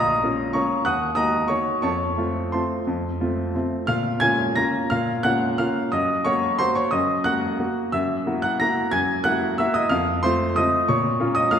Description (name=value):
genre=classical, piano waltz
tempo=165-206 BPM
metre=3/4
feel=rubato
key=Bb minor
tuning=A4 = 440 Hz
part: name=clear baby grand piano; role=solo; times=0.0-11.6 s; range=Bb1 to Bb6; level=-20 LUFS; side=equal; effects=none
room=wet scoring stage reverb, RT60 1.8 s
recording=heard from further back in the room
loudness=-20 LUFS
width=side -8 dB against mid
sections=0.0-3.9 A section; 3.9-11.6 B section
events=none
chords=0.0 Bbm; 0.9 Ebm; 1.8 F; 3.9 Bbm; 5.9 Ebm/Gb; 7.9 Gb7; 9.9 F; 10.9 Bbm